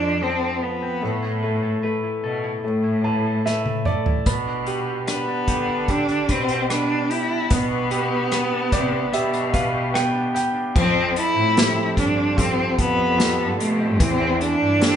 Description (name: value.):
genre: pop ballad.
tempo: 74 BPM.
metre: 4/4.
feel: straight.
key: unclear.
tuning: A4 = 440 Hz.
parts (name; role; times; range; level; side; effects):
warm cello; melody; 0.0-15.0 s; A3 to E4; -22 LUFS; equal; none.
clear concert grand piano; accompaniment; 0.0-15.0 s; E3 to A5; -26 LUFS; right 1 dB; none.
electric guitar at the edge of break-up; arpeggios; 0.0-15.0 s; A2 to B4; -29 LUFS; left 1 dB; tape echo.
rich chamber cello section; bass; 0.0-15.0 s; E2 to D3; -27 LUFS; equal; none.
unplugged drum kit; drums; 3.5-15.0 s; crash cymbal, hi-hat, kick drum, rim click, snare drum, toms; -23 LUFS; equal; none.
room: moderate large studio reverb, RT60 1.1 s.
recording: band playing live in one room, nothing above 10.7 kHz.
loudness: -19 LUFS.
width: side -9 dB against mid.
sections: 0.0-10.8 A section; 10.8-15.0 B section.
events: grand piano fill 2.6-4.3, 8.3-10.8; drum fill 3.5-4.3.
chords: 0.0 F; 1.0 Asus2; 4.3 G/B; 10.8 Fadd9; 14.0 Am7/E.